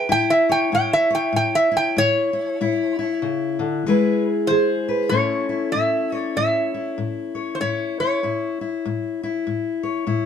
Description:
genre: acoustic country blues, solo or duo.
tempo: 96 BPM.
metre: 4/4.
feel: swing 60% on 8ths.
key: A major.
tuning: A4 = 440 Hz.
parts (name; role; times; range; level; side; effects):
metal-body resonator slide guitar; melody; 0.0-9.8 s; C5 to G5; -20 LUFS; right 1 dB; none.
fingerpicked steel-string acoustic guitar; accompaniment; 0.0-10.3 s; A2 to C#5; -22 LUFS; left 4 dB; none.
room: moderate studio reverb, RT60 0.8 s.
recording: dark, warm production.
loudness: -19 LUFS.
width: side -8 dB against mid.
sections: 0.0-5.1 A section; 5.1-10.3 B section.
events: resonator guitar played with a steel bar solo 0.0-5.1.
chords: 0.1 A; 3.8 E; 5.1 A.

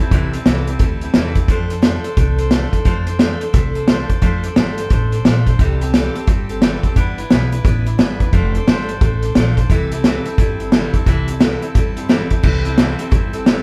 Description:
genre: rockabilly.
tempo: 175 BPM.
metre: 4/4.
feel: swing 63% on 8ths.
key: C major.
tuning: A4 = 441 Hz.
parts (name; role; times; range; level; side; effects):
picked steel-string acoustic guitar; accompaniment; 0.0-13.6 s; C3 to C5; -25 LUFS; equal; none.
upright bass; bass; 0.1-13.6 s; F1 to F2; -23 LUFS; equal; none.
vintage drum kit; drums; 0.1-13.6 s; crash cymbal, hi-hat, kick drum, snare drum; -17 LUFS; equal; none.
room: light reverb.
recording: band playing live in one room.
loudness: -16 LUFS.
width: mono.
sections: 0.0-12.4 A section; 12.4-13.6 A section.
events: none.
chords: 0.0 C6; 1.5 F6; 5.6 C6; 7.0 G6; 8.3 F6; 9.7 C6.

